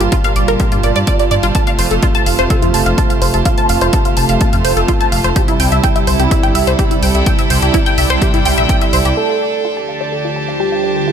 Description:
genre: melodic techno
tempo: 126 BPM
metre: 4/4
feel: straight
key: unclear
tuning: A4 = 438 Hz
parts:
  - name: tight sequenced synth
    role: arpeggios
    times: 0.0-11.1 s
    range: E4 to A5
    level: -18 LUFS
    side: equal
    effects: chorus, phaser, sidechain pumping, dub echo
  - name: brassy analog pad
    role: stabs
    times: 0.0-9.1 s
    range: Bb2 to F4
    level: -18 LUFS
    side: right 3 dB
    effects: chorus, sidechain pumping, dub echo
  - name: dark detuned saw bass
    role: bass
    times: 0.0-9.1 s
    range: F1 to G2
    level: -17 LUFS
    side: equal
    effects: sidechain pumping
  - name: electronic hi-hat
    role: drums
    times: 0.0-9.1 s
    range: none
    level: -23 LUFS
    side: left 2 dB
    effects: low-pass filter on hats
  - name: bright chamber string section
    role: texture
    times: 0.0-11.1 s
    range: D4 to A5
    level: -21 LUFS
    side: right 3 dB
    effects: sidechain pumping
  - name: electronic kick drum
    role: drums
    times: 0.1-8.8 s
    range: none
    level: -16 LUFS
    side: equal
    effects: none
  - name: wide unison lead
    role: melody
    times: 9.2-11.1 s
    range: G4 to A4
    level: -19 LUFS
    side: right 1 dB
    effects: sidechain pumping, ping-pong delay
  - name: deep dark ambient pad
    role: sustained chords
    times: 9.9-11.1 s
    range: D3 to A4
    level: -22 LUFS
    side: equal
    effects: chorus, built-in reverb, sidechain pumping
room: light reverb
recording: none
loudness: -11 LUFS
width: side -8 dB against mid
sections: 0.0-9.2 A section; 9.2-11.1 B section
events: fade-in on string section 0.0-9.2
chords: 0.0 Gm7; 1.6 F; 5.4 C; 9.2 Dm

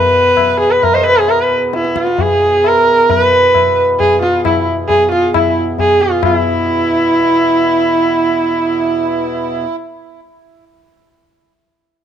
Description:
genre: indian classical, Hindustani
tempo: 134 BPM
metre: 7/4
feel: straight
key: E major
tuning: A4 = 442 Hz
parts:
  - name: dark sarangi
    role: melody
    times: 0.0-9.7 s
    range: E4 to D#5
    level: -11 LUFS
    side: right 1 dB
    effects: none
  - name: pedal harmonium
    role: second line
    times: 0.0-9.8 s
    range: E4 to C5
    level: -23 LUFS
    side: right 13 dB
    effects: tape echo
  - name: pedal harmonium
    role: drone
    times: 0.0-9.7 s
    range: E2 to B2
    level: -24 LUFS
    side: equal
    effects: none
  - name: tabla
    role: percussion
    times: 0.4-6.4 s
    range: none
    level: -18 LUFS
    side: left 7 dB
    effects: none
room: light reverb, studio ambience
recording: 1960s-style stereo with parts hard left and right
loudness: -10 LUFS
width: side -9 dB against mid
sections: 0.0-6.2 A section; 6.2-9.3 B section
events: speeding up 0.0-9.3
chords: none

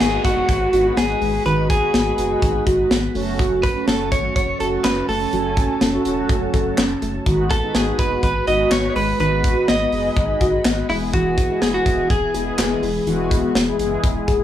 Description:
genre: synth-pop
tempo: 124 BPM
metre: 4/4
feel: straight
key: unclear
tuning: A4 = 440 Hz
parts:
  - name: direct-recorded clean electric guitar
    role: melody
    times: 0.0-14.4 s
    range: E4 to D#5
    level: -22 LUFS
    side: equal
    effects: tape echo
  - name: mellow synth brass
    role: accompaniment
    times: 0.0-14.4 s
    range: F#3 to G#5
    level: -24 LUFS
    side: right 1 dB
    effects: chorus
  - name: ensemble organ-string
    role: sustained chords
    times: 0.0-14.4 s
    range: E3 to B4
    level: -28 LUFS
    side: right 1 dB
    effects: ensemble chorus
  - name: soft round pluck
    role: arpeggios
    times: 0.0-14.4 s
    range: D#3 to A4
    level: -24 LUFS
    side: left 2 dB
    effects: chorus, tape echo
  - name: round analog bass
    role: bass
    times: 0.0-14.4 s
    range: E1 to G#1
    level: -27 LUFS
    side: equal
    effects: none
  - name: modern studio drum kit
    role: drums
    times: 0.0-14.4 s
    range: handclaps, hi-hat, kick drum, snare drum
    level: -22 LUFS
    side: equal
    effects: none
  - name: downlifter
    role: sound effects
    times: 0.0-3.4 s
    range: none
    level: -31 LUFS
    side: right 1 dB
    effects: none
room: small room ambience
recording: dry, gritty hardware recording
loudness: -16 LUFS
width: side -11 dB against mid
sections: 0.0-14.4 A section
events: none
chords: 0.0 G#m7; 3.2 F#m; 7.3 G#m7; 10.9 E

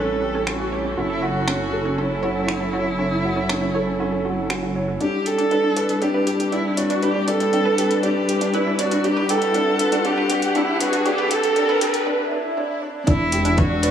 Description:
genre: piano and strings electronica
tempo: 119 BPM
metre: 4/4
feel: straight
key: E dorian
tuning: A4 = 441 Hz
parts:
  - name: warm viola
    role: melody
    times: 0.0-13.9 s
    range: E4 to A4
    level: -23 LUFS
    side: equal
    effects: tape echo, shimmer reverb
  - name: muted string quartet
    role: sustained chords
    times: 0.0-12.1 s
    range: F#3 to F#5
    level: -26 LUFS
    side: equal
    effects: sidechain pumping
  - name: warm grand piano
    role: riff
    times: 0.0-13.9 s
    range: C#4 to D5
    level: -24 LUFS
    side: equal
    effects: tape echo, shimmer reverb
  - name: dark detuned saw bass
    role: bass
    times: 0.0-5.0, 13.1-13.9 s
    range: E1 to A1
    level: -28 LUFS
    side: equal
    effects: sidechain pumping
  - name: analog pluck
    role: arpeggios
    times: 0.3-13.9 s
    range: C#4 to D5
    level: -28 LUFS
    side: right 2 dB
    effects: chorus, phaser, sidechain pumping, tape echo, shimmer reverb
  - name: deep house drum kit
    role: drums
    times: 0.5-13.9 s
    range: finger snaps, hi-hat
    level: -28 LUFS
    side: equal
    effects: overdrive, high-pass filter on snare, small room ambience, high-pass filter on hats
  - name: riser and swell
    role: sound effects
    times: 7.2-13.1 s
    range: none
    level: -28 LUFS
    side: right 1 dB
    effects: none
  - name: electronic kick drum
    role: drums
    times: 13.1-13.7 s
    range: none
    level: -20 LUFS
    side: equal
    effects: overdrive, small room ambience
room: moderate scoring stage reverb, RT60 1.9 s, small room ambience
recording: high-pass filter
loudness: -18 LUFS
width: side -9 dB against mid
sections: 0.0-5.0 A section; 5.0-13.1 B section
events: build-up 5.0-13.1; riser 7.2-12.1; break 12.1-13.1; swell 12.1-13.1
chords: 0.0 A7; 1.0 F#m7; 5.0 Em7; 9.0 Gmaj7; 13.1 Em7

